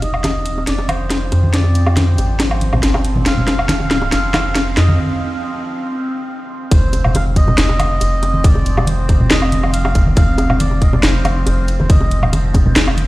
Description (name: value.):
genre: deep dubstep.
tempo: 139 BPM.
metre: 4/4.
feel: half-time.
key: unclear.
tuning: A4 = 440 Hz.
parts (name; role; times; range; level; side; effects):
melodica; melody; 0.0-12.3 s; C5 to F5; -24 LUFS; right 1 dB; low-pass filter, dub echo.
overtone-sweeping drone; sustained chords; 0.0-13.1 s; F3 to C4; -24 LUFS; equal; chorus, built-in reverb, phaser.
soft dub sub bass; bass; 0.0-13.1 s; F1 to F2; -16 LUFS; equal; none.
garage drum kit; drums; 0.0-13.1 s; hi-hat, snare drum, woodblock; -19 LUFS; equal; overdrive.
bongos and congas; percussion; 0.0-13.1 s; none; -21 LUFS; equal; none.
electronic kick drum; drums; 6.7-12.6 s; none; -11 LUFS; equal; overdrive.
room: light reverb.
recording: played on a big sound system in a bare room, stone room reverb, lossy compression artefacts.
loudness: -13 LUFS.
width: side -18 dB against mid.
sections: 0.0-6.7 A section; 6.7-13.1 B section.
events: build-up 0.0-6.7; drum fill 0.0-5.0; filter sweep on melodica 0.0-6.7; break 5.0-6.7; drop 6.7-13.1.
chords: 0.0 F5.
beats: 0.24 0.67 1.10 | 1.54 1.97 2.40 2.83 | 3.26 3.69 4.13 4.56 | 4.99 5.42 5.85 6.28 | 6.72 7.15 7.58 8.01 | 8.44 8.87 9.31 9.74 | 10.17 10.60 11.03 11.46 | 11.90 12.33 12.76.